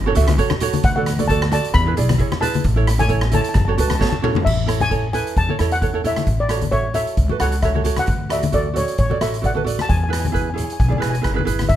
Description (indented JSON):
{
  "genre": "calypso",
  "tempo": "133 BPM",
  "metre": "4/4",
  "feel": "swing 54% on 16ths",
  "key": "A major",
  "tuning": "A4 = 440 Hz",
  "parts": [
    { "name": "upright bass", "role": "bass", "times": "0.0-11.8 s", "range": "E1 to E2", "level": "-21 LUFS", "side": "equal", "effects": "none" },
    { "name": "ukulele", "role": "accompaniment", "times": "0.1-11.7 s", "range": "E4 to E5", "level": "-23 LUFS", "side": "right 8 dB", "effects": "none" },
    { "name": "street-band drum kit", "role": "drums", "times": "0.2-11.8 s", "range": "crash cymbal, hi-hat, kick drum, rim click, snare drum, toms", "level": "-22 LUFS", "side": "equal", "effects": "none" },
    { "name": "congas", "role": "percussion", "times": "0.2-11.7 s", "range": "none", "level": "-25 LUFS", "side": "left 4 dB", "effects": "none" },
    { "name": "steel pan", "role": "melody", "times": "0.8-11.8 s", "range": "C#5 to B5", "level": "-24 LUFS", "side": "left 3 dB", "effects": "none" }
  ],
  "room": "light reverb",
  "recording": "close, detailed microphones",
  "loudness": "-16 LUFS",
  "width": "side -12 dB against mid",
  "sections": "0.0-4.5 A section; 4.5-11.8 B section",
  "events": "drum fill 4.0-4.5",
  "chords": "0.0 F#m7; 0.8 D; 1.8 E7; 2.7 A; 3.6 F#m; 4.5 A; 6.3 F#m7/A; 8.1 D; 9.9 E"
}